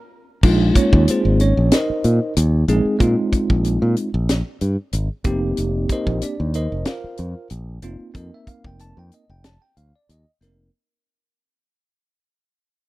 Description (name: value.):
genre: electric jazz fusion.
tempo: 93 BPM.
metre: 4/4.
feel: swing 54% on 16ths.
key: Bb dorian.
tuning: A4 = 440 Hz.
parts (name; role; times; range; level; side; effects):
bell-like tine electric piano; accompaniment; 0.4-10.7 s; Ab3 to A5; -21 LUFS; right 1 dB; medium stereo tremolo.
modern bright fingered electric bass; bass; 0.4-10.7 s; F1 to Bb2; -18 LUFS; equal; none.
tight funk drum kit; drums; 0.4-10.6 s; crash cymbal, hi-hat, kick drum, snare drum; -19 LUFS; equal; none.
room: small room ambience.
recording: dry, close 1970s-style studio recording.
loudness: -16 LUFS.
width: side -18 dB against mid.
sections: 0.4-10.7 A section.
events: tine electric piano fill 0.0-0.4; drum fill 0.0-0.4; band accent 0.0-0.4; fade-out 0.4-10.7.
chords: 0.4 Bb9sus4; 5.3 F9sus4.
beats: | 0.43 1.07 1.72 2.36 | 3.00 3.64 4.29 4.93 | 5.57 6.22 6.86 7.51 | 8.15 8.80 9.45 10.09.